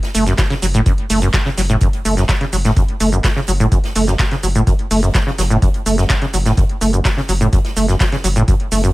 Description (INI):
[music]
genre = acid house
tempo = 126 BPM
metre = 4/4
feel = straight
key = F# minor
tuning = A4 = 441 Hz
[part]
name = electro analog drum machine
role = drums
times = 0.0-8.9 s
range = cabasa, handclaps, hi-hat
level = -22 LUFS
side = right 1 dB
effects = none
[part]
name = street-band drum kit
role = drums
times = 0.0-8.8 s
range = hi-hat, snare drum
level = -31 LUFS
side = right 2 dB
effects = sidechain pumping on hats, high-pass filter on hats, high-pass filter on snare, high-pass filter on room
[part]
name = acid bass, saw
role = riff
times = 0.1-8.9 s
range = F#2 to A3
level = -17 LUFS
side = equal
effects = tube saturation, lush chorus, cassette tape, sidechain pumping, digital delay
[part]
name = round analog bass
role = bass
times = 0.1-8.9 s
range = F#1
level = -18 LUFS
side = equal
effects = sidechain pumping
[part]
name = electronic kick drum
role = drums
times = 0.4-8.6 s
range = none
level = -16 LUFS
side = equal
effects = overdrive
[sound]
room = light reverb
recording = none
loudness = -13 LUFS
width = side -19 dB against mid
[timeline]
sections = 0.0-8.9 A section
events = none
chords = 0.0 F#m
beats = 0.39 | 0.86 1.34 1.81 2.29 | 2.77 3.24 3.72 4.19 | 4.67 5.15 5.62 6.10 | 6.58 7.05 7.53 8.00 | 8.48